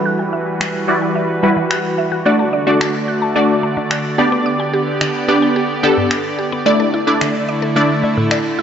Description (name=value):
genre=dance-pop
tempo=109 BPM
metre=4/4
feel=straight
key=D major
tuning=A4 = 440 Hz
part: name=wide unison pluck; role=accompaniment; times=0.0-8.6 s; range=G3 to D5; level=-16 LUFS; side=equal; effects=phaser, low-pass filter
part: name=supersaw pad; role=sustained chords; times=0.0-8.6 s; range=D3 to D5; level=-19 LUFS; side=right 1 dB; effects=low-pass filter
part: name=mallet-like synth pluck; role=arpeggios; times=0.1-8.6 s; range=G2 to F#6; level=-22 LUFS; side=right 1 dB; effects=chorus, phaser, low-pass filter, tape echo
part: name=electronic finger snaps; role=drums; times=0.6-8.4 s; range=none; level=-24 LUFS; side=equal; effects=none
room=moderate lush hall reverb, RT60 2.2 s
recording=dark, warm production, nothing above 7.8 kHz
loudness=-14 LUFS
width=side -8 dB against mid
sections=0.0-8.6 A section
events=filter sweep 0.0-8.6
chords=0.0 Emadd9; 2.3 D; 4.2 G; 6.7 Asus4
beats=| 0.06 0.61 1.16 1.71 | 2.26 2.81 3.36 3.91 | 4.46 5.01 5.56 6.11 | 6.66 7.21 7.76 8.31